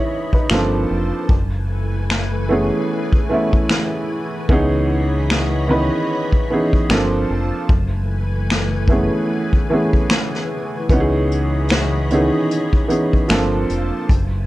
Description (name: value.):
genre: lo-fi hip hop.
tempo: 75 BPM.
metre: 4/4.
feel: swing 60% on 16ths.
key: unclear.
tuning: A4 = 438 Hz.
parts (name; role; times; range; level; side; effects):
warm upright piano; accompaniment; 0.0-14.1 s; D#3 to E5; -19 LUFS; right 1 dB; cassette tape, low-pass filter.
soft string machine; sustained chords; 0.0-14.5 s; E3 to B5; -28 LUFS; left 2 dB; ensemble chorus, low-pass filter.
vintage brush drum kit; drums; 0.3-14.3 s; finger snaps, hi-hat, kick drum, snare drum; -17 LUFS; equal; vintage 12-bit sampler grit.
deep dub fingered electric bass; bass; 0.5-14.5 s; F1 to C#2; -20 LUFS; equal; none.
room: light reverb.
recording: cassette tape.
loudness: -16 LUFS.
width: side -17 dB against mid.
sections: 0.0-14.5 A section.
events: break 0.0-10.9.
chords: 0.5 Gm11; 1.3 F#m11; 4.5 C#m9; 6.9 Gm11; 7.7 F#m11; 10.9 C#m9; 13.3 Gm11.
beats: 0.49 | 1.29 2.09 2.89 3.69 | 4.49 5.29 6.09 6.89 | 7.69 8.49 9.29 10.09 | 10.89 11.69 12.49 13.29 | 14.09.